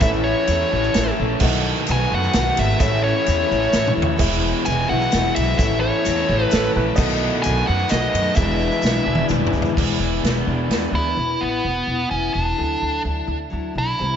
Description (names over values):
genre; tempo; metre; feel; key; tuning
folk rock and heartland rock; 129 BPM; 3/4; straight; E mixolydian; A4 = 440 Hz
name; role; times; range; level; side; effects
nasal lead guitar with a parked wah; melody; 0.0-14.2 s; B3 to G#5; -23 LUFS; equal; overdrive, digital delay
dark baby grand piano; accompaniment; 0.0-9.7 s; E4 to F#5; -33 LUFS; right 5 dB; none
picked steel-string acoustic guitar; accompaniment; 0.0-14.2 s; E2 to F#4; -26 LUFS; left 5 dB; slapback echo
tonewheel organ; sustained chords; 0.0-11.2 s; E4 to E6; -32 LUFS; equal; overdrive, stopped rotary speaker
crunchy overdriven guitar; riff; 0.0-11.2 s; E2 to F#4; -25 LUFS; right 1 dB; none
upright bass; bass; 0.0-14.2 s; E1 to F#2; -24 LUFS; equal; none
natural country drum kit; drums; 0.0-10.8 s; crash cymbal, hi-hat, kick drum, ride cymbal, snare drum, splash cymbal, toms; -23 LUFS; equal; none
tube shaker; percussion; 0.0-9.7 s; none; -38 LUFS; left 8 dB; none
dark upright piano; second line; 6.5-7.3 s; A4 to D#5; -27 LUFS; right 4 dB; slapback echo
room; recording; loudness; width
moderate lush hall reverb, RT60 2.3 s; big arena sound, nothing above 7.6 kHz; -17 LUFS; side -8 dB against mid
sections
0.0-9.8 A section; 9.8-11.2 B section; 11.2-14.2 C section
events
drum fill 3.7-4.2, 8.8-9.8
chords
0.0 A; 1.4 B7; 2.8 A; 4.2 E; 5.6 A; 7.0 B7; 8.4 E7; 11.2 Esus2; 12.6 Dadd9